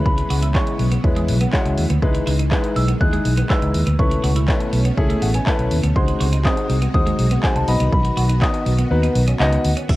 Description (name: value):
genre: dance-pop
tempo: 122 BPM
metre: 4/4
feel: straight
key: unclear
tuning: A4 = 441 Hz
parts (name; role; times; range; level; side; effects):
- worn celesta; melody; 0.0-8.9 s; G#5 to F#6; -27 LUFS; equal; tape echo
- warm concert grand piano; accompaniment; 0.0-9.9 s; G#3 to A5; -24 LUFS; left 2 dB; sidechain pumping, cassette tape
- string machine, violins; sustained chords; 0.0-10.0 s; B2 to F#4; -28 LUFS; equal; ensemble chorus, sidechain pumping, cassette tape
- twelve-string electric guitar; riff; 0.0-10.0 s; G#3 to F#4; -30 LUFS; right 4 dB; lush chorus, cassette tape
- vintage muted fingered electric bass; bass; 0.1-10.0 s; A1 to E2; -18 LUFS; equal; sidechain pumping
- deep house drum kit; drums; 0.1-10.0 s; crash cymbal, handclaps, hi-hat, kick drum; -21 LUFS; equal; cassette tape
room: little or no reverb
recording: home recording on cassette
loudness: -16 LUFS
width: side -17 dB against mid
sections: 0.0-9.9 A section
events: grand piano fill 5.0-6.0, 9.2-9.9; kick muted 8.9-9.9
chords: 0.0 C#m7; 2.0 Emaj7; 4.0 Aadd9; 6.0 G#7; 7.7 B